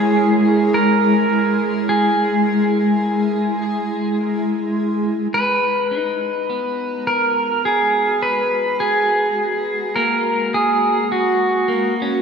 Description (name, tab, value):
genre	ambient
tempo	52 BPM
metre	3/4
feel	straight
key	G# minor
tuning	A4 = 440 Hz
part	pedal steel guitar	melody	0.0-11.9 s	F#4 to B4	-18 LUFS	right 1 dB	tape echo
part	granular cloud pad	sustained chords	0.0-12.2 s	G#3 to A#5	-20 LUFS	left 1 dB	built-in reverb
part	clean electric guitar	arpeggios	5.9-12.2 s	A#3 to D#4	-27 LUFS	left 3 dB	tape echo
room	wet cathedral reverb, RT60 5.1 s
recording	none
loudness	-16 LUFS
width	side -6 dB against mid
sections	0.0-5.3 A section; 5.3-12.2 B section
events	fade-in on ambient pad 5.3-12.2; fade-in on clean electric guitar 5.3-12.2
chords	0.0 C#m/G# (rootless); 5.3 G#m9